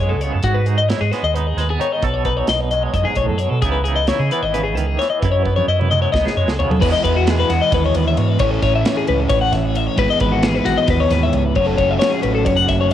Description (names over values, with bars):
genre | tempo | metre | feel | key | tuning
math rock and midwest emo | 265 BPM (eighths) | 7/8 | straight | E major | A4 = 440 Hz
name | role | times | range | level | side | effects
twangy electric guitar | accompaniment | 0.0-8.4 s | F#2 to A4 | -26 LUFS | right 11 dB | tremolo, cassette tape
twelve-string electric guitar | arpeggios | 0.0-12.9 s | F#4 to F#5 | -19 LUFS | left 6 dB | cassette tape, analog delay
fingered electric bass | bass | 0.0-12.9 s | F#1 to F#3 | -20 LUFS | right 2 dB | none
modern studio drum kit | drums | 0.2-12.9 s | crash cymbal, hi-hat, kick drum, ride cymbal, snare drum, toms | -23 LUFS | right 2 dB | cassette tape
crunchy overdriven guitar | riff | 6.8-12.9 s | G#2 to F#4 | -20 LUFS | right 2 dB | cassette tape
room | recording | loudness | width
small room ambience | home recording on cassette | -15 LUFS | side -11 dB against mid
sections
0.0-6.8 A section; 6.8-12.9 B section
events
drum fill 5.4-6.8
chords
0.4 G#m7; 2.0 B13; 3.6 C#m9; 5.2 F#m11; 6.8 Emaj9; 8.4 A; 10.0 Emaj9/G#; 11.6 F#m7